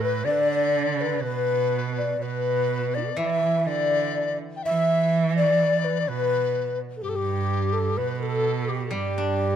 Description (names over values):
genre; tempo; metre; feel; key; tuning
chinese traditional, Chinese chamber ensemble; 62 BPM; 2/4; rubato; G gong mode; A4 = 440 Hz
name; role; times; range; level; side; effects
breathy low xiao; melody; 0.0-9.6 s; D4 to E5; -25 LUFS; left 1 dB; none
reedy large dizi; second line; 0.0-9.6 s; G4 to G5; -29 LUFS; left 7 dB; none
rich cello; second line; 0.0-9.6 s; G2 to E3; -27 LUFS; right 5 dB; none
steel-string zither; accompaniment; 3.2-9.6 s; E3 to D4; -32 LUFS; left 1 dB; none
room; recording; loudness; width
light reverb; close, detailed microphones; -22 LUFS; side -9 dB against mid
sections
0.0-9.6 A section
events
none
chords
none